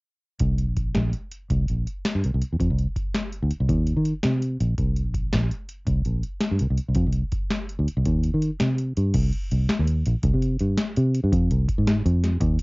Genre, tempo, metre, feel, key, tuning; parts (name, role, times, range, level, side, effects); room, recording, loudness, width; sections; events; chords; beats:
highlife guitar band; 110 BPM (dotted quarters); 12/8; straight; C minor; A4 = 440 Hz
fingered electric bass; bass; 0.4-12.6 s; Bb1 to Eb3; -21 LUFS; equal
booming analog drum machine; drums; 0.4-12.6 s; crash cymbal, hi-hat, kick drum, snare drum; -27 LUFS; equal; overdrive, cassette tape
little or no reverb; home recording on cassette, nothing above 7.6 kHz; -21 LUFS; side -28 dB against mid
0.4-9.1 A section; 9.1-12.6 B section
| 0.41 0.96 1.50 2.05 | 2.60 3.15 3.69 4.24 | 4.78 5.33 5.88 6.42 | 6.97 7.51 8.06 8.60 | 9.15 9.69 10.23 10.78 | 11.32 11.87 12.41